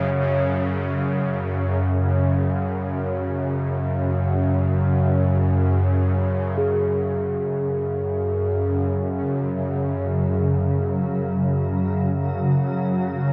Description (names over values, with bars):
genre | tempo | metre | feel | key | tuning
dark ambient drone | free time | none | none | unclear | A4 = 441 Hz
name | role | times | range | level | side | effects
bowed-like drone | drone | 0.0-13.3 s | F#2 to C#3 | -24 LUFS | equal | built-in reverb
bronze singing bowl | texture | 0.0-13.3 s | G#4 to C#5 | -31 LUFS | equal | none
granular cloud pad | sustained chords | 8.7-13.3 s | C#3 to F#4 | -28 LUFS | equal | built-in reverb
room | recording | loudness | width
wet huge ambient reverb, RT60 8.2 s | worn, warbling old tape, cassette tape, warbly pitch drift | -22 LUFS | mono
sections
0.0-6.6 A section; 6.6-13.3 B section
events
none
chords
0.0 F#5